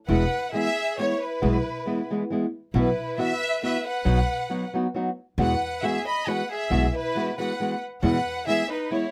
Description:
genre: mexican folk, mariachi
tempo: 136 BPM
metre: 3/4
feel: swing 53% on 8ths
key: E major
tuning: A4 = 440 Hz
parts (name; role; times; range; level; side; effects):
- warm symphonic violin section; melody; 0.1-9.1 s; B4 to B5; -31 LUFS; equal; none
- dark violin; second line; 0.1-9.1 s; D#4 to D#5; -35 LUFS; equal; none
- nylon-string guitar; accompaniment; 0.1-9.1 s; E2 to F#4; -28 LUFS; equal; none
- upright bass; bass; 0.1-8.2 s; E1 to E2; -28 LUFS; equal; none
room: light reverb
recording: close, detailed microphones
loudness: -26 LUFS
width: mono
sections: 0.1-9.1 A section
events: none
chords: 0.1 E; 2.7 Bsus4; 4.0 B; 5.4 Eadd9; 8.0 E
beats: | 0.08 0.53 0.98 | 1.42 1.86 2.30 | 2.74 3.17 3.61 | 4.05 4.49 4.94 | 5.39 5.83 6.28 | 6.72 7.16 7.59 | 8.03 8.47 8.91

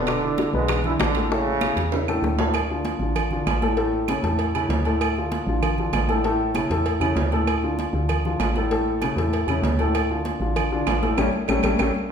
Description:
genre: latin, salsa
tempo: 195 BPM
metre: 4/4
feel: straight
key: D harmonic minor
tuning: A4 = 440 Hz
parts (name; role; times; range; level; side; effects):
- bright trombone section; melody; 0.0-2.2 s; G#2 to E4; -25 LUFS; right 3 dB; none
- dark grand piano; accompaniment; 0.0-11.9 s; A2 to B4; -24 LUFS; left 2 dB; none
- woody FM bass; bass; 0.0-11.9 s; E1 to E2; -26 LUFS; right 1 dB; none
- bongos and cowbell; percussion; 0.1-11.9 s; none; -32 LUFS; left 3 dB; none
- claves; percussion; 0.1-11.9 s; none; -34 LUFS; right 6 dB; none
- congas; percussion; 0.1-11.9 s; none; -31 LUFS; equal; none
- timbales and agogo bells; percussion; 0.1-11.9 s; none; -29 LUFS; right 7 dB; none
room: wet recital hall reverb, RT60 1.3 s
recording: recorded in a church or concert hall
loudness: -20 LUFS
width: side -7 dB against mid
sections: 0.0-2.5 A section; 2.5-12.1 B section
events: drum fill 1.6-2.5, 11.6-12.1; band accent 11.2-12.1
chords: 0.1 E7; 1.3 A; 2.5 Dm; 3.8 A; 5.0 Dm; 6.2 A; 7.5 Dm; 8.7 A; 9.9 Dm; 11.2 A7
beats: | 0.07 0.38 0.69 1.00 | 1.31 1.62 1.93 2.23 | 2.54 2.85 3.16 3.47 | 3.78 4.08 4.39 4.70 | 5.01 5.32 5.62 5.93 | 6.24 6.55 6.86 7.17 | 7.47 7.78 8.09 8.40 | 8.71 9.02 9.32 9.63 | 9.94 10.25 10.56 10.87 | 11.17 11.48 11.79

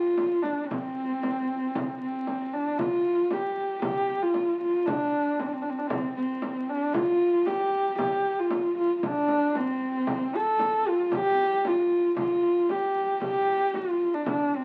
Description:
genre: mongolian traditional, Mongolian folk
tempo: 115 BPM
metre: 4/4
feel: straight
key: C zhi mode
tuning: A4 = 440 Hz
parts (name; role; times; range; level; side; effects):
- warm horsehead fiddle; melody; 0.0-14.6 s; C4 to A4; -27 LUFS; equal; none
- frame drum; percussion; 0.2-14.6 s; none; -37 LUFS; equal; none
room: wet studio reverb, RT60 0.8 s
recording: very old 78 rpm record, vinyl crackle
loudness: -27 LUFS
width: mono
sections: 0.0-2.8 A section; 2.8-14.6 B section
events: none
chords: none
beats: 0.17 | 0.69 1.21 1.73 2.25 | 2.77 3.29 3.81 4.34 | 4.86 5.38 5.90 6.42 | 6.94 7.47 7.99 8.51 | 9.03 9.55 10.08 10.60 | 11.12 11.64 12.17 12.69 | 13.21 13.73 14.26

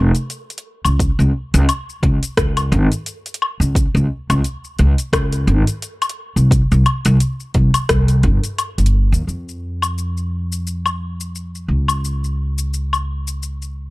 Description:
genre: sunset chillout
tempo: 87 BPM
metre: 4/4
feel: swing 56% on 16ths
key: unclear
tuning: A4 = 438 Hz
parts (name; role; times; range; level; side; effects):
- upright bass; bass; 0.0-13.9 s; F1 to F2; -16 LUFS; equal; none
- deep house drum kit; drums; 0.1-13.7 s; hi-hat, rim click, shaker, woodblock; -22 LUFS; left 2 dB; overdrive, small room ambience
- electronic kick drum; drums; 1.0-8.4 s; none; -19 LUFS; equal; overdrive, small room ambience
room: little or no reverb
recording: dark, warm production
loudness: -15 LUFS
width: side -21 dB against mid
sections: 0.0-9.3 A section; 9.3-13.9 B section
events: none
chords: none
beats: 0.31 | 1.00 1.69 2.38 3.07 | 3.76 4.45 5.14 5.83 | 6.51 7.21 7.89 8.58 | 9.27 9.96 10.65 11.34 | 12.03 12.72 13.41

